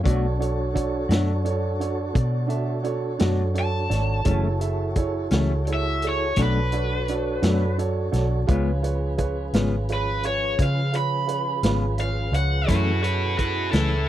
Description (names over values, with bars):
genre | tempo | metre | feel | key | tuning
slow blues | 57 BPM (dotted quarters) | 12/8 | straight | F# minor | A4 = 439 Hz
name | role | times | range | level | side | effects
mellow electric guitar | accompaniment | 0.0-14.0 s | F#2 to F#4 | -26 LUFS | left 5 dB | harmonic tremolo
warm upright piano | accompaniment | 0.0-14.0 s | D4 to E5 | -29 LUFS | right 8 dB | none
mellow tonewheel organ | sustained chords | 0.0-14.1 s | E#3 to G#5 | -32 LUFS | left 1 dB | slow rotary speaker
vintage muted fingered electric bass | bass | 0.1-14.1 s | F#1 to C#3 | -24 LUFS | equal | none
vintage drum kit | drums | 0.1-13.9 s | hi-hat, kick drum, snare drum | -25 LUFS | equal | none
cranked stack guitar | melody | 3.6-14.1 s | E4 to B5 | -26 LUFS | equal | overdrive
room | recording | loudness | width
little or no reverb | dry, close 1970s-style studio recording | -21 LUFS | side -12 dB against mid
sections
0.0-12.7 A section; 12.7-14.1 B section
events
overdriven electric guitar solo 12.7-14.1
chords
0.1 Bm7; 4.3 F#m7; 6.4 Bm7; 8.5 C#7; 12.7 F#m7